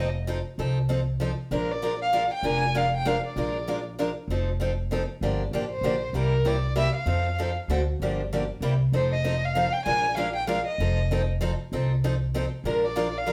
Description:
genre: acoustic string swing (jazz manouche)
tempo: 194 BPM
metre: 3/4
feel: swing 58% on 8ths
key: F mixolydian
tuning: A4 = 440 Hz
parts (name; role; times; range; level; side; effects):
- dark violin; melody; 0.0-13.3 s; Bb4 to Ab5; -30 LUFS; equal; plate reverb
- picked steel-string acoustic guitar; accompaniment; 0.0-13.3 s; C3 to Bb4; -31 LUFS; equal; none
- upright bass; bass; 0.0-13.3 s; F1 to F2; -30 LUFS; equal; none
room: wet studio reverb, RT60 0.6 s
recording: heard from further back in the room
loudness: -26 LUFS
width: mono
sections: 0.0-8.9 A section; 8.9-13.3 A section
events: none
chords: 0.0 F7; 1.5 Bb7; 4.3 F7; 5.2 Gm7; 6.1 C7; 7.1 F7; 7.7 D7; 8.0 Gm7; 8.6 C7; 8.9 F7; 9.9 Bb7; 10.8 F7; 12.6 Bb7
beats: 0.27 | 0.58 0.89 1.20 | 1.50 1.81 2.12 | 2.43 2.74 3.05 | 3.36 3.67 3.98 | 4.29 4.60 4.91 | 5.22 5.53 5.83 | 6.14 6.45 6.76 | 7.07 7.38 7.69 | 8.00 8.31 8.62 | 8.93 9.24 9.55 | 9.86 10.17 10.47 | 10.79 11.09 11.40 | 11.71 12.02 12.33 | 12.64 12.95 13.26

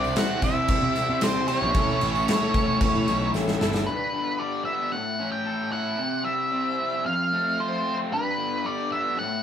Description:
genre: classic rock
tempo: 113 BPM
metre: 4/4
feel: straight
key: unclear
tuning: A4 = 440 Hz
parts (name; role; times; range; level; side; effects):
- octave-fuzz lead guitar; melody; 0.0-9.4 s; B4 to G5; -26 LUFS; equal; distortion
- octave-fuzz lead guitar; second line; 0.0-3.3 s; C4 to F#4; -33 LUFS; right 3 dB; distortion
- bright upright piano; accompaniment; 0.0-3.8 s; E4 to E5; -35 LUFS; left 6 dB; none
- bright tonewheel organ; sustained chords; 0.0-3.8 s; E4 to E5; -40 LUFS; equal; none
- raw garage guitar; riff; 0.0-9.4 s; F2 to C5; -28 LUFS; left 1 dB; overdrive
- fuzz picked electric bass; bass; 0.0-3.8 s; G1 to C3; -30 LUFS; equal; overdrive
- tambourine; percussion; 0.0-3.8 s; none; -47 LUFS; right 7 dB; none
- big rock drum kit; drums; 0.2-3.9 s; crash cymbal, kick drum, snare drum; -26 LUFS; equal; none
room: wet large studio reverb, RT60 0.8 s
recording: band playing live in one room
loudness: -22 LUFS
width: side -9 dB against mid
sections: 0.0-3.9 A section; 3.9-9.4 B section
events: drum fill 3.3-3.9; half time 3.9-9.4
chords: 0.0 Cadd9; 1.7 A; 3.9 G; 4.9 A; 6.0 C; 7.1 F; 8.1 G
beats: 0.16 0.69 1.22 | 1.75 2.27 2.81 3.34 | 3.87 4.40 4.93 5.46 | 5.99 6.53 7.06 7.59 | 8.12 8.65 9.19

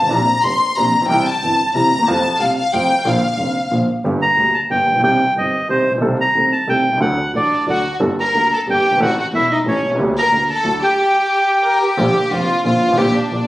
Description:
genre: tango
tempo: 182 BPM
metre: 3/4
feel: rubato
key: Bb major, G minor from 4.0 s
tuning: A4 = 440 Hz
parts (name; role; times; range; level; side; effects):
- clear studio violin section; second line; 0.0-3.7, 7.4-13.5 s; C#4 to C6; -17 LUFS; left 1 dB; none
- warm grand piano; accompaniment; 0.0-13.4 s; E1 to A4; -20 LUFS; right 1 dB; none
- warm double bass; bass; 0.0-13.4 s; E1 to F2; -25 LUFS; equal; none
- bandoneon; melody; 4.2-11.8 s; C5 to Bb5; -16 LUFS; equal; none
room: light reverb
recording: recorded on a phone in the room, studio reverb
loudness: -14 LUFS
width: side -16 dB against mid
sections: 0.0-4.0 A section; 4.0-12.0 B section; 12.0-13.5 A section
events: violin section solo 0.0-4.0, 12.0-13.5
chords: 0.1 Bbadd9; 1.1 C; 2.1 Fadd9; 3.1 Bb; 4.0 Gm; 5.0 Cm; 6.0 Adim/C; 7.0 D; 8.0 Gmadd9; 9.0 A; 10.0 Gm/D; 10.6 D; 11.0 N.C.; 12.0 Bb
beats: | 0.11 0.44 0.77 | 1.10 1.42 1.75 | 2.07 2.40 2.72 | 3.05 3.38 3.71 | 4.05 4.38 4.71 | 5.04 5.37 5.70 | 6.03 6.35 6.68 | 7.01 7.34 7.68 | 8.01 8.35 8.68 | 9.01 9.34 9.66 | 9.99 10.32 10.65 | 10.98 11.31 11.64 | 11.98 12.31 12.64 | 12.97 13.30

